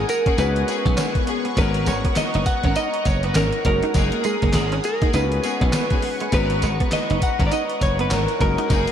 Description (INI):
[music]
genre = R&B, new jack swing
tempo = 101 BPM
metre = 4/4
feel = swing 60% on 16ths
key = G# minor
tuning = A4 = 440 Hz
[part]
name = direct-recorded clean electric guitar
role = melody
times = 0.0-8.9 s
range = G#4 to F#5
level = -24 LUFS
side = equal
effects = wide subtle chorus
[part]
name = clear baby grand piano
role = accompaniment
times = 0.0-8.9 s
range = G#3 to B4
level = -30 LUFS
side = left 4 dB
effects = none
[part]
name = phased analog pad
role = sustained chords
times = 0.0-8.9 s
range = B3 to D#6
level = -29 LUFS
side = left 1 dB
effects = phaser, chorus
[part]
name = direct-recorded clean electric guitar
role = riff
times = 0.0-8.9 s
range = G#3 to D#4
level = -30 LUFS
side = right 5 dB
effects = lush chorus
[part]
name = glassy slap bass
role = bass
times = 0.0-8.8 s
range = F#1 to C#2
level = -22 LUFS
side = equal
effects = none
[part]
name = gated 80s digital drum machine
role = drums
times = 0.1-8.9 s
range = handclaps, hi-hat, kick drum, snare drum, tambourine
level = -23 LUFS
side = equal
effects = gated reverb, gated reverb snare, overdrive
[part]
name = warm studio string section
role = stabs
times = 0.3-8.9 s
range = A#3 to A#4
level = -31 LUFS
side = left 4 dB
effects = none
[sound]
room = moderate huge ambient reverb, RT60 4.6 s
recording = dreamy mix soaked in reverb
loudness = -18 LUFS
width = side -9 dB against mid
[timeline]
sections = 0.0-8.9 A section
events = none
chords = 0.4 C#7sus4; 1.6 G#m11; 3.6 F#69; 5.1 C#7sus4; 6.3 G#m11; 8.4 F#69